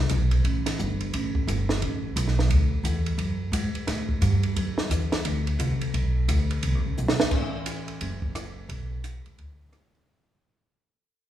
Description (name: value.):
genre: modal jazz.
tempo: 174 BPM.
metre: 4/4.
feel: swing 63% on 8ths.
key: unclear.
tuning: A4 = 440 Hz.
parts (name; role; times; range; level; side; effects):
upright bass; bass; 0.0-10.0 s; F#1 to A2; -24 LUFS; equal; none.
compact cocktail drum kit; drums; 0.1-10.0 s; crash cymbal, hi-hat, kick drum, ride cymbal, rim click, snare drum; -29 LUFS; right 1 dB; none.
room: wet concert hall reverb, RT60 1.8 s.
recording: recorded in a church or concert hall, small room ambience.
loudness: -23 LUFS.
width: side -11 dB against mid.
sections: 0.0-7.3 A section; 7.3-10.1 B section.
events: drum fill 7.0-7.3; fade-out 7.3-10.1.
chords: none.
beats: 0.10 | 0.45 0.79 1.13 1.48 | 1.82 2.16 2.50 2.85 | 3.19 3.54 3.88 4.22 | 4.57 4.91 5.25 5.60 | 5.94 6.29 6.63 6.97 | 7.32 7.66 8.01 8.35 | 8.69 9.04 9.38 9.73.